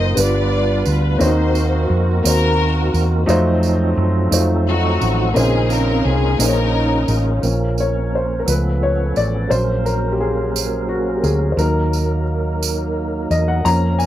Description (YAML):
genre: slow gospel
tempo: 58 BPM (dotted quarters)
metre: 6/8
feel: straight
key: Bb minor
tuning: A4 = 438 Hz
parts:
  - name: warm studio string section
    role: melody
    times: 0.0-7.4 s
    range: A3 to Eb5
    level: -21 LUFS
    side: left 1 dB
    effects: none
  - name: warm upright piano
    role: accompaniment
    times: 0.0-14.1 s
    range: G2 to Bb5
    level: -21 LUFS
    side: left 1 dB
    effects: none
  - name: tonewheel organ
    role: sustained chords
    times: 0.0-14.1 s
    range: F3 to C5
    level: -24 LUFS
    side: right 3 dB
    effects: slow rotary speaker, overdrive, chorus vibrato
  - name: hollow-body short-scale fingered electric bass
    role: bass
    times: 0.0-14.1 s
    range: Gb1 to Gb2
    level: -18 LUFS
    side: equal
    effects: none
  - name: tambourine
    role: percussion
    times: 0.2-14.1 s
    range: none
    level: -26 LUFS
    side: right 11 dB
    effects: none
  - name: mellow French horn section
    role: sustained chords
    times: 7.4-14.1 s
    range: Db3 to Bb4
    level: -30 LUFS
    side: right 2 dB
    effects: none
room: light reverb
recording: dry, close 1970s-style studio recording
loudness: -15 LUFS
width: side -12 dB against mid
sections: 0.0-7.4 A section; 7.4-14.1 B section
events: upright piano solo 7.4-14.1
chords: 0.2 G7; 1.2 Cm7b5/Eb; 3.3 F7b9; 5.4 Bbm11; 7.4 Bbm; 8.5 Dbaug7; 9.5 Gb/Bb; 11.6 Ebm